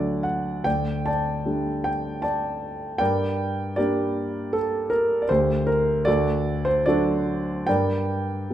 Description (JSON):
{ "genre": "classical, lyrical solo piano", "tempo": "77 BPM", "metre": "3/4", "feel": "uneven beats, rubato", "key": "G minor", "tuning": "A4 = 440 Hz", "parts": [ { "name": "dark grand piano", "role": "solo", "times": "0.0-8.5 s", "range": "D2 to A5", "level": "-22 LUFS", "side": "equal", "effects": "none" } ], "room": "moderate recital hall reverb, RT60 1.6 s", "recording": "minimal, uncompressed stereo recording", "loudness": "-22 LUFS", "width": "side -11 dB against mid", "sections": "0.0-8.5 A section", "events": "none", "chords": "0.0 D; 0.6 Dsus4; 3.0 Gm; 5.3 Gm/D; 6.1 D; 7.7 Gm" }